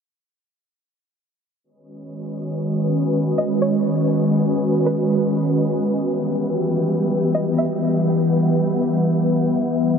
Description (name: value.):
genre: hip hop.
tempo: free time.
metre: none.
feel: none.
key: B major.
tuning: A4 = 439 Hz.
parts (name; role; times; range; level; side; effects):
ethereal airy pad; sustained chords; 2.1-10.0 s; C#3 to F#5; -18 LUFS; equal; ensemble chorus, built-in reverb.
wind-like tuned noise texture; texture; 2.0-10.0 s; B3 to E5; -31 LUFS; left 2 dB; built-in reverb.
string-like resonator pluck; melody; 3.4-9.5 s; B4 to E5; -29 LUFS; right 1 dB; chorus, low-pass filter, diffuse ambient delay.
room: wet huge ambient reverb, RT60 7.8 s.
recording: dreamy mix soaked in reverb, low-pass filter.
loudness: -17 LUFS.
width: side -6 dB against mid.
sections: 1.6-10.0 A section.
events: filter sweep 1.6-10.0.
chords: 1.6 B69; 5.6 Em.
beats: free time.